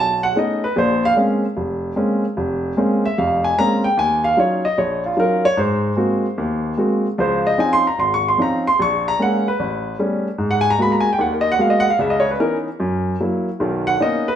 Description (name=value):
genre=solo jazz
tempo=150 BPM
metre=4/4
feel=swing 67% on 8ths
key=Bb minor, Eb minor from 4.0 s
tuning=A4 = 440 Hz
part: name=warm grand piano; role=solo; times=0.0-14.4 s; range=F1 to Db6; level=-16 LUFS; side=equal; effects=none
room=wet stone room reverb, RT60 0.9 s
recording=band playing live in one room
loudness=-16 LUFS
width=side -9 dB against mid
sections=0.0-4.0 A section; 4.0-14.4 A section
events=grand piano solo 0.0-14.4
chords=0.0 B9; 0.8 Bbm9; 4.0 Ebm9; 5.6 Ab9; 7.2 Dbmaj9; 8.8 Bbm7; 9.6 A9; 10.4 Abm9; 12.0 Dbm9; 12.8 Gb7; 13.6 Bmaj9